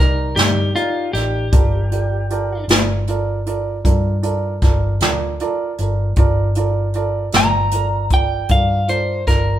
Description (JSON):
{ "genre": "slow blues", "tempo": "52 BPM (dotted quarters)", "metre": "12/8", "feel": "straight", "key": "G minor", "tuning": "A4 = 441 Hz", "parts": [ { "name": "clean electric guitar", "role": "melody", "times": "0.0-9.6 s", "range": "F4 to Bb5", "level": "-20 LUFS", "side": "left 1 dB", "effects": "none" }, { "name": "warm upright piano", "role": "accompaniment", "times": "0.0-9.6 s", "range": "Eb4 to D5", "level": "-23 LUFS", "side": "right 5 dB", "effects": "none" }, { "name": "vintage muted fingered electric bass", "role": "bass", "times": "0.0-9.6 s", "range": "G1 to G2", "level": "-20 LUFS", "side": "equal", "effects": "none" }, { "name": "jazz brush drum kit", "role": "drums", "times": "0.0-9.5 s", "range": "hi-hat, kick drum, snare drum", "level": "-17 LUFS", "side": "equal", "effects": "none" } ], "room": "moderate large studio reverb, RT60 0.9 s", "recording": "band playing live in one room", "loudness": "-15 LUFS", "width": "side -12 dB against mid", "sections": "0.0-9.6 A section", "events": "none", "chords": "0.0 Cm7; 1.5 Gm7", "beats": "0.37 | 1.53 2.69 3.85 5.02 | 6.18 7.34 8.50" }